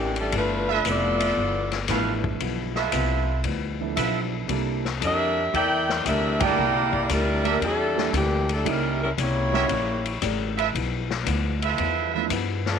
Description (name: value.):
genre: jazz, big band swing.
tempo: 115 BPM.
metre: 4/4.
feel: swing 68% on 8ths.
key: unclear.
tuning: A4 = 436 Hz.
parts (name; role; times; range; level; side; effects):
warm saxophone section; melody; 0.0-1.9, 5.0-12.8 s; E3 to G5; -24 LUFS; left 1 dB; none.
archtop guitar, miked and amplified; accompaniment; 0.0-12.7 s; G2 to A4; -33 LUFS; left 15 dB; none.
upright bass; bass; 0.0-12.8 s; F1 to G2; -28 LUFS; equal; none.
swinging big-band drum kit; drums; 0.2-12.7 s; hi-hat, kick drum, ride cymbal, snare drum; -30 LUFS; left 8 dB; none.
mellow trumpet section; stabs; 0.7-12.3 s; F4 to G5; -27 LUFS; right 15 dB; none.
warm concert grand piano; accompaniment; 1.9-12.3 s; F3 to A4; -30 LUFS; right 16 dB; none.
room: light reverb, small room ambience.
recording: 1960s-style stereo with parts hard left and right.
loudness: -22 LUFS.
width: side -7 dB against mid.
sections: 0.0-12.8 A section.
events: band accent 6.3.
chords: 0.3 G13; 4.5 C13; 8.7 C#dim7; 10.7 G13.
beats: | 0.33 0.85 1.37 1.89 | 2.41 2.93 3.45 3.97 | 4.49 5.01 5.54 6.06 | 6.58 7.10 7.62 8.14 | 8.66 9.18 9.70 10.22 | 10.75 11.27 11.79 12.31.